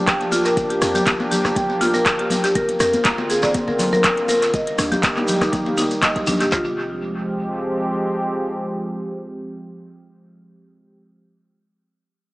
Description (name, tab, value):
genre	afro house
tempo	121 BPM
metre	4/4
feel	swing 54% on 16ths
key	F dorian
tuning	A4 = 441 Hz
part	warm analog pad	sustained chords	0.0-11.0 s	D3 to G4	-24 LUFS	right 1 dB	chorus, sidechain pumping
part	marimba with medium hard mallets	arpeggios	0.1-6.8 s	D4 to Bb5	-21 LUFS	equal	sidechain pumping, dub echo
part	afro-pop drum kit	drums	0.1-6.6 s	handclaps, kick drum, snare drum	-24 LUFS	equal	none
part	afro-pop drum kit	drums	0.1-6.5 s	handclaps, hi-hat, rim click	-23 LUFS	equal	dub echo
part	shekere	percussion	0.1-6.5 s	none	-30 LUFS	equal	dub echo
part	congas	percussion	0.3-6.4 s	none	-26 LUFS	left 1 dB	dub echo
part	warm 808-style bass	bass	0.6-8.0 s	Eb1 to F2	-31 LUFS	equal	sidechain pumping
room	moderate plate reverb, RT60 2.5 s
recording	echo-heavy mix, small speaker sound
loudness	-17 LUFS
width	side -20 dB against mid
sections	0.0-6.5 A section; 6.5-10.5 B section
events	drop 0.0-6.5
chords	0.0 Gm7/F; 2.6 Bbadd9/F; 4.5 Eb; 6.5 Fmadd9